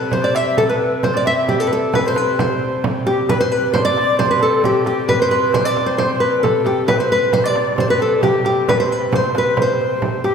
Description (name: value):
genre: medieval dance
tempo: 134 BPM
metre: 2/4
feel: straight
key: C major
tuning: A4 = 439 Hz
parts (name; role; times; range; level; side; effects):
- nylon-string guitar; melody; 0.0-10.3 s; G4 to E5; -17 LUFS; equal; none
- breathy bass recorder; second line; 0.0-10.3 s; G4 to E5; -22 LUFS; left 4 dB; none
- hammered dulcimer; second line; 0.0-10.3 s; G4 to E5; -24 LUFS; right 4 dB; none
- dark hurdy-gurdy; drone; 0.0-10.3 s; C3 to G3; -27 LUFS; left 1 dB; none
- frame drum; percussion; 0.1-10.3 s; none; -22 LUFS; right 3 dB; none
room: wet recital hall reverb, RT60 1.6 s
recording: recorded in a church or concert hall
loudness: -14 LUFS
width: side -6 dB against mid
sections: 0.0-3.3 A section; 3.3-10.3 B section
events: none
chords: none